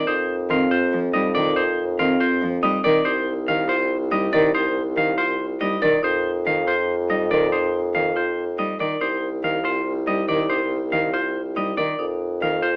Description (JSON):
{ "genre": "classical, minimalist pattern music", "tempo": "282 BPM (eighths)", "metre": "7/8", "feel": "straight", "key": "C minor", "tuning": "A4 = 440 Hz", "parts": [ { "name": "clean electric guitar", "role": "melody", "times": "0.0-12.8 s", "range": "C5 to F5", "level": "-26 LUFS", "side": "equal", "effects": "none" }, { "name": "marimba with hard mallets", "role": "arpeggios", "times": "0.0-12.8 s", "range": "C4 to Bb4", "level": "-28 LUFS", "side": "equal", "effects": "none" }, { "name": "warm bassoon", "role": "bass", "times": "0.1-12.8 s", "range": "C2 to F2", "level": "-27 LUFS", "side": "equal", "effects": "none" }, { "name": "rich cello", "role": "accompaniment", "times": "0.5-12.6 s", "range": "Eb3 to G3", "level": "-28 LUFS", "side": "equal", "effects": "none" } ], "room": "moderate large studio reverb, RT60 0.8 s", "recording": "small speaker sound", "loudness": "-22 LUFS", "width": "mono", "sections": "0.0-12.8 A section", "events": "none", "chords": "0.1 F7sus4; 3.0 Cm7; 6.0 F7sus4; 9.0 Cm7; 12.0 F7(no3)", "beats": "| 0.07 0.28 0.50 0.71 0.92 1.14 1.35 | 1.56 1.77 1.99 2.20 2.41 2.62 2.84 | 3.05 3.26 3.48 3.69 3.90 4.11 4.33 | 4.54 4.75 4.96 5.18 5.39 5.60 5.82 | 6.03 6.24 6.45 6.67 6.88 7.09 7.30 | 7.52 7.73 7.94 8.16 8.37 8.58 8.79 | 9.01 9.22 9.43 9.65 9.86 10.07 10.28 | 10.50 10.71 10.92 11.13 11.35 11.56 11.77 | 11.99 12.20 12.41 12.62" }